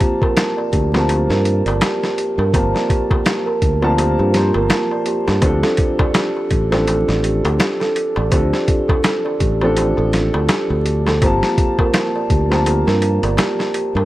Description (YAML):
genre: trip hop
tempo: 83 BPM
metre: 4/4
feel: swing 58% on 16ths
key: G minor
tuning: A4 = 440 Hz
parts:
  - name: warm upright piano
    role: accompaniment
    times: 0.0-14.1 s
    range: F3 to A5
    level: -20 LUFS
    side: equal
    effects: harmonic tremolo, tape echo
  - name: large celesta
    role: arpeggios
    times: 0.0-14.1 s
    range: G4 to D5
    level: -20 LUFS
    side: right 2 dB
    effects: analog delay
  - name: boom bap sampler-style drum kit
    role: drums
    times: 0.0-13.9 s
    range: hi-hat, kick drum, snare drum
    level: -18 LUFS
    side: equal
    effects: none
  - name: darbuka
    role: percussion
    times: 0.2-14.1 s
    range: none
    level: -28 LUFS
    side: left 2 dB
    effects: none
  - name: modern bright fingered electric bass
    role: bass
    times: 0.7-14.1 s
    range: G1 to G2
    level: -18 LUFS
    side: equal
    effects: tube saturation
room: small room reverb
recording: dry, gritty hardware recording, vinyl crackle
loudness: -14 LUFS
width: side -16 dB against mid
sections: 0.0-14.1 A section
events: none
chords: 0.0 Gm11; 5.4 Dm7; 11.2 Gm11